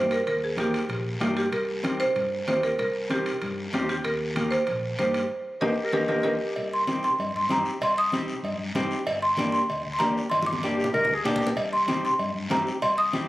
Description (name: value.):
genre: latin, cumbia.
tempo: 191 BPM.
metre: 4/4.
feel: straight.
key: C minor.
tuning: A4 = 440 Hz.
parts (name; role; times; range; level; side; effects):
marimba with medium hard mallets; melody; 0.0-13.3 s; G4 to Eb6; -26 LUFS; right 1 dB; none.
semi-hollow electric guitar; accompaniment; 0.0-13.3 s; Bb3 to G4; -30 LUFS; left 1 dB; none.
fingered electric bass; bass; 0.0-13.3 s; G1 to G2; -35 LUFS; left 1 dB; none.
guiro; percussion; 0.1-13.3 s; none; -40 LUFS; left 2 dB; none.
timbales and cowbell; percussion; 0.1-13.3 s; none; -33 LUFS; right 1 dB; none.
congas; percussion; 0.3-13.3 s; none; -36 LUFS; left 1 dB; none.
warm clarinet; second line; 5.6-6.6, 10.8-11.6 s; G4 to Bb4; -28 LUFS; equal; none.
room: moderate plate reverb, RT60 2.4 s.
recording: recorded on a phone in the room, studio ambience, compression.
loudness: -23 LUFS.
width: side -17 dB against mid.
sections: 0.0-6.6 A section; 6.6-13.3 B section.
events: band accent 5.3-6.6; drum fill 5.6-6.6, 10.3-11.6.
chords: 0.0 Eb; 1.5 Cm7; 4.0 Eb; 6.6 Cm; 9.1 Gm; 11.6 Cm.